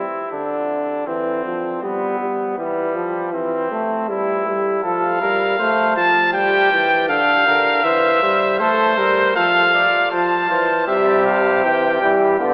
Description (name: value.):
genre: classical, imitative canzona for brass ensemble.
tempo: 80 BPM.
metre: 4/4.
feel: straight.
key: unclear.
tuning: A4 = 440 Hz.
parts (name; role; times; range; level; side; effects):
mellow trumpet; second line; 0.0-12.5 s; G3 to D5; -25 LUFS; equal; none.
warm trombone; accompaniment; 0.0-12.5 s; D3 to B3; -23 LUFS; equal; none.
warm trumpet; melody; 4.8-12.5 s; C5 to A5; -19 LUFS; equal; none.
clear euphonium; bass; 10.9-12.5 s; C3 to E3; -22 LUFS; equal; none.
room: wet cathedral reverb, RT60 5.5 s.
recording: AM radio sound.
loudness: -18 LUFS.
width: mono.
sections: 0.0-12.5 A section.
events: none.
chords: 0.3 Dm; 1.8 G; 3.3 C/E; 4.8 F; 6.3 Gm; 7.8 C/E; 9.4 F; 10.9 C.